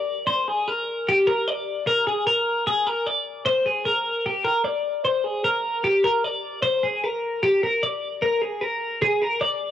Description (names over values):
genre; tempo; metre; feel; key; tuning
rock; 151 BPM; 4/4; straight; unclear; A4 = 440 Hz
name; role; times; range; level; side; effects
twelve-string electric guitar; solo; 0.0-9.7 s; G4 to D5; -21 LUFS; left 1 dB; lush chorus
room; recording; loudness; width
moderate lush hall reverb, RT60 2.5 s; home recording on cassette; -20 LUFS; side -11 dB against mid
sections
0.0-9.7 A section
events
none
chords
none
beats
| 0.28 0.68 1.08 1.48 | 1.87 2.27 2.67 3.06 | 3.46 3.86 4.25 4.65 | 5.05 5.45 5.84 6.24 | 6.64 7.03 7.43 7.83 | 8.22 8.62 9.02 9.42